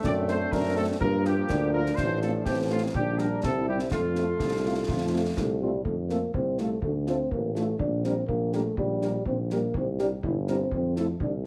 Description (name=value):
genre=military-style march for wind band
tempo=124 BPM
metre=2/4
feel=straight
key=F major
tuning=A4 = 440 Hz
part: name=warm euphonium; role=second line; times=0.0-11.3 s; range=G3 to E4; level=-33 LUFS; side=equal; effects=none
part: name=warm trombone section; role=sustained chords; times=0.0-5.6 s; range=F3 to F4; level=-36 LUFS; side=equal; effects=none
part: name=clear tuba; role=bass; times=0.0-11.5 s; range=G1 to G2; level=-32 LUFS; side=equal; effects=none
part: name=concert snare drum, concert bass drum and clash cymbals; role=drums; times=0.0-11.4 s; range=none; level=-37 LUFS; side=equal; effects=none
part: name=mellow trumpet section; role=melody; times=0.1-11.1 s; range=F4 to D5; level=-37 LUFS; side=equal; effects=none
part: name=mellow French horn section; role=accompaniment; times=0.3-11.1 s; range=G3 to A4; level=-36 LUFS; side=equal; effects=none
room=light reverb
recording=heavily compressed radio sound, multiband compression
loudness=-27 LUFS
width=mono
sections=0.0-5.9 A section; 5.9-11.5 B section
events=none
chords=0.0 D7/F#; 1.0 Gm7; 2.0 F/A; 3.0 Gm/Bb; 3.4 C; 3.9 F; 6.8 Dm; 7.8 Gm/Bb; 9.8 C; 10.7 F5